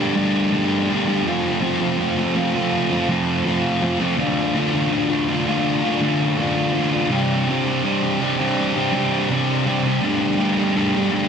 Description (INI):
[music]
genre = rock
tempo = 82 BPM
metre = 4/4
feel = straight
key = D minor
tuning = A4 = 442 Hz
[part]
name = sludgy distorted guitar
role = solo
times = 0.0-11.3 s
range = C3 to G4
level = -18 LUFS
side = equal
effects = overdrive, tape echo
[sound]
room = moderate lush hall reverb, RT60 2.8 s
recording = big arena sound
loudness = -18 LUFS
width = side -7 dB against mid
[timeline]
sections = 0.0-11.3 A section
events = none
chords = 0.0 Gsus2; 1.3 F; 4.2 Dm; 7.1 Csus2; 10.0 Gsus2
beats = 0.55 | 1.28 2.01 2.73 3.46 | 4.19 4.92 5.65 6.38 | 7.11 7.84 8.57 9.31 | 10.04 10.77